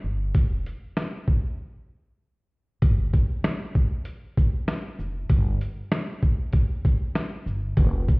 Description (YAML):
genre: hip hop, boom-bap hip-hop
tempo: 97 BPM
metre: 4/4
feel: swing 62% on 16ths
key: unclear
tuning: A4 = 440 Hz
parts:
  - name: upright bass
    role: bass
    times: 0.0-8.1 s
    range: F1 to G1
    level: -26 LUFS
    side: equal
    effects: none
  - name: boom bap sampler-style drum kit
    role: drums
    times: 0.3-8.2 s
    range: hi-hat, kick drum, shaker, snare drum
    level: -21 LUFS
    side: equal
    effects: none
room: little or no reverb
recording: heard muffled through a wall, stone room reverb, EQ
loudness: -22 LUFS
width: side -31 dB against mid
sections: 0.0-2.8 A section; 2.8-8.2 B section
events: break 1.6-2.8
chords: none